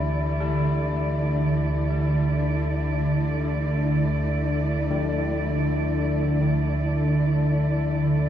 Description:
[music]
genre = dark ambient drone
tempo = free time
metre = none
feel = none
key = unclear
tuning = A4 = 442 Hz
[part]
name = dark studio cello section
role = sustained chords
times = 0.0-8.3 s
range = D3 to D5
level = -28 LUFS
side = right 1 dB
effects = shimmer reverb
[part]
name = carillon bells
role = arpeggios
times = 0.0-8.3 s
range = D3 to E4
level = -32 LUFS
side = left 4 dB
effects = tape echo, shimmer reverb
[part]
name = deep rumbling drone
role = drone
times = 0.0-8.3 s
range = D2 to D3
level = -22 LUFS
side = equal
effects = built-in reverb, phaser
[sound]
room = moderate plate reverb, RT60 3.7 s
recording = dreamy mix soaked in reverb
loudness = -21 LUFS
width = side -10 dB against mid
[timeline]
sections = 0.0-8.3 A section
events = none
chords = 0.0 D5

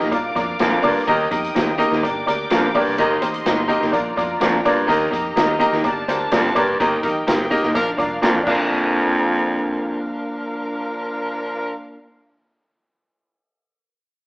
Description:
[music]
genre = uptempo 1960s-style soul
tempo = 126 BPM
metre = 4/4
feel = straight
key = Bb major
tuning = A4 = 438 Hz
[part]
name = warm studio string section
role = second line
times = 0.0-11.7 s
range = D4 to Eb6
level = -28 LUFS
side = equal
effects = none
[part]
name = bright upright piano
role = accompaniment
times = 0.0-11.7 s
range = Bb3 to F5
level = -20 LUFS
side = equal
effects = none
[part]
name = electric guitar through a small old amp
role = stabs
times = 0.0-12.0 s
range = Bb3 to Bb4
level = -24 LUFS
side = equal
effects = none
[part]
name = vintage muted fingered electric bass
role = bass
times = 0.0-11.7 s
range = F1 to Bb2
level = -36 LUFS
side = equal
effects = none
[part]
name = vintage drum kit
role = drums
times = 0.0-8.6 s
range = crash cymbal, hi-hat, kick drum, snare drum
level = -26 LUFS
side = equal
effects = none
[part]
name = raspy baritone saxophone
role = riff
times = 0.6-10.1 s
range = Eb2 to G2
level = -21 LUFS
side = equal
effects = none
[part]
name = warm horn section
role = second line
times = 7.0-11.7 s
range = F3 to Bb4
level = -27 LUFS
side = equal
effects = none
[sound]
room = moderate stone room reverb, RT60 1.1 s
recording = band playing live in one room, AM radio sound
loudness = -17 LUFS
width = side -32 dB against mid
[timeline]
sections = 0.0-8.7 A section; 8.7-12.5 B section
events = band accent 6.8-8.7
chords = 0.1 Bb; 1.1 Eb; 2.0 Gm; 3.0 Eb/G; 3.9 Bb; 4.9 Eb; 5.8 Gm; 6.8 Eb/G; 7.8 Bb

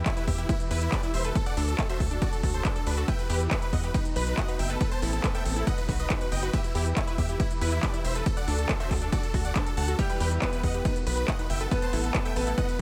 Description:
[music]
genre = uplifting trance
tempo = 139 BPM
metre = 4/4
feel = straight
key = E minor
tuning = A4 = 440 Hz
[part]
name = dark studio string section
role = sustained chords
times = 0.0-12.8 s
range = C3 to B4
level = -40 LUFS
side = equal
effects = sidechain pumping
[part]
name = tight sequencer bass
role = bass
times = 0.0-12.5 s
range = E1 to E2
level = -31 LUFS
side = equal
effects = tube saturation, sidechain pumping
[part]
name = big supersaw lead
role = melody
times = 0.1-12.8 s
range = D4 to A5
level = -37 LUFS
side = equal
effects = sidechain pumping, tape echo
[part]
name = analog pluck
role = arpeggios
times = 0.1-12.6 s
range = D4 to B4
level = -39 LUFS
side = equal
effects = chorus, sidechain pumping, tape echo
[part]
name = electronic kick drum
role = drums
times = 0.1-12.7 s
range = none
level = -30 LUFS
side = equal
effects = none
[part]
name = techno drum kit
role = drums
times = 0.1-12.8 s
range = handclaps, hi-hat, ride cymbal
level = -38 LUFS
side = equal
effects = sidechain pumping on hats, sidechain pumping on cymbals
[part]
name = clear concert grand piano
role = second line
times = 10.0-12.8 s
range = G3 to B4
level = -36 LUFS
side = equal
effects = none
[sound]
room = little or no reverb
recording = none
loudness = -27 LUFS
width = mono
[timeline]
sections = 0.0-12.8 A section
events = none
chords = 0.0 Em; 1.4 D; 3.1 Em; 3.9 B; 4.8 Amadd9; 5.7 B; 6.5 Em; 8.3 D; 10.0 Em; 10.9 B; 11.7 Amadd9

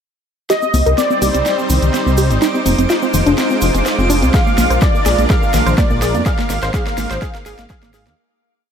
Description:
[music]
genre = progressive house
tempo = 125 BPM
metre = 4/4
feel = straight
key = C minor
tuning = A4 = 442 Hz
[part]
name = wide unison lead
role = melody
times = 0.5-8.2 s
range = D5 to F5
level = -20 LUFS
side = equal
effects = analog chorus, sidechain pumping, ping-pong delay
[part]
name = supersaw pad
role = sustained chords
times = 0.7-8.2 s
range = G3 to C5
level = -21 LUFS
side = right 1 dB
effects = sidechain pumping
[part]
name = analog pluck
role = arpeggios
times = 0.5-8.1 s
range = Bb3 to C5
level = -19 LUFS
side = equal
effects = chorus, sidechain pumping, ping-pong delay
[part]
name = deep house drum kit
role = drums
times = 0.5-8.2 s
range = hi-hat, snare drum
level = -26 LUFS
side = equal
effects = overdrive, high-pass filter on snare, studio reverb, sidechain pumping on hats, high-pass filter on hats
[part]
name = egg shaker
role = percussion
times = 0.5-8.2 s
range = none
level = -30 LUFS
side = right 4 dB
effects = none
[part]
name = twinkling granular texture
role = texture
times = 2.0-8.2 s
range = D6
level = -27 LUFS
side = right 2 dB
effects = built-in reverb, sidechain pumping
[part]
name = dark detuned saw bass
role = bass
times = 0.7-8.1 s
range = F1 to F2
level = -17 LUFS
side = equal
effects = sidechain pumping
[part]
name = congas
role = percussion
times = 0.7-7.1 s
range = none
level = -24 LUFS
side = left 6 dB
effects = sidechain pumping on perc, studio reverb
[part]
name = electronic kick drum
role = drums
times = 4.3-7.8 s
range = none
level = -16 LUFS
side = equal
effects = overdrive, studio reverb
[sound]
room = light reverb, digital ambience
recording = none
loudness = -12 LUFS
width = side -8 dB against mid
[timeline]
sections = 0.5-8.2 build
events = build-up 0.5-8.2; drum fill 0.5-8.2; filter sweep on synth arpeggio sound 0.5-8.2; fade-out 5.6-8.2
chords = 0.5 Cmadd9; 2.4 Fm7; 4.3 Bb7; 6.3 Absus2

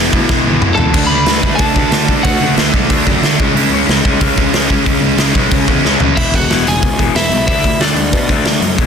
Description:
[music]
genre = punk rock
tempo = 184 BPM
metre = 4/4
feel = straight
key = unclear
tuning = A4 = 440 Hz
[part]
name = raw garage guitar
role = riff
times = 0.0-8.9 s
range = E2 to D4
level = -17 LUFS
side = left 14 dB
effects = overdrive
[part]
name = sludgy distorted guitar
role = riff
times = 0.0-6.2 s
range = E2 to D4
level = -17 LUFS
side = right 15 dB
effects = overdrive
[part]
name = fuzz picked electric bass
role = bass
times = 0.0-8.9 s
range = E1 to B2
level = -19 LUFS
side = equal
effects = overdrive
[part]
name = raw garage drum kit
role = drums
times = 0.1-8.9 s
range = crash cymbal, hi-hat, kick drum, snare drum, splash cymbal, toms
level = -14 LUFS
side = equal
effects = none
[part]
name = lightly driven lead guitar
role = melody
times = 0.7-2.6, 6.2-8.6 s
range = D4 to B5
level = -17 LUFS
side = equal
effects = none
[sound]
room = light reverb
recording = dense, heavily limited modern master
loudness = -10 LUFS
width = side -7 dB against mid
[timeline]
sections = 0.0-6.2 A section; 6.2-8.9 B section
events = drum fill 0.3-0.9, 5.8-6.2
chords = 0.0 E5; 0.9 D; 3.4 C#5; 6.2 E; 7.5 D

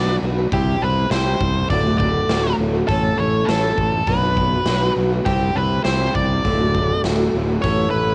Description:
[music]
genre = quiet-loud alternative rock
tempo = 101 BPM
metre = 4/4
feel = straight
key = D major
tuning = A4 = 440 Hz
[part]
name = octave-fuzz lead guitar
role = melody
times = 0.0-8.1 s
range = G4 to D5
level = -25 LUFS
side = equal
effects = distortion, cassette tape
[part]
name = picked old ladder-braced acoustic guitar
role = arpeggios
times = 0.0-8.1 s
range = D2 to C5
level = -25 LUFS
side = equal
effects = cassette tape, tape echo
[part]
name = fuzz fingered electric bass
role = bass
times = 0.0-8.1 s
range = D1 to C2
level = -24 LUFS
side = equal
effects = overdrive
[part]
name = raw garage drum kit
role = drums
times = 0.5-7.8 s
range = hi-hat, kick drum, snare drum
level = -26 LUFS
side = equal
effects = none
[sound]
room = small room ambience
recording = home recording on cassette, nothing above 10.8 kHz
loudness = -19 LUFS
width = mono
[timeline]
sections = 0.0-8.1 A section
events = none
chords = 0.0 Bm; 0.5 C; 1.7 D; 2.9 A; 4.1 Bm; 5.3 C; 6.4 D; 7.6 A

